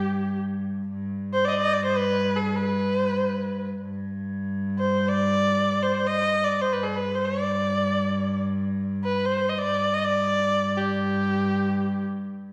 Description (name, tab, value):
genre	Persian modal ensemble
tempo	free time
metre	none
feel	none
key	G dastgah homayun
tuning	A4 = 441 Hz
part	clear kamancheh	melody	0.0-12.1 s	G4 to Eb5	-27 LUFS	equal	none
part	rich cello	drone	0.0-12.5 s	G2	-29 LUFS	equal	none
room	wet recital hall reverb, RT60 1.6 s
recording	heard from further back in the room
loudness	-25 LUFS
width	mono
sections	0.9-12.5 A section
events	none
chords	none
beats	free time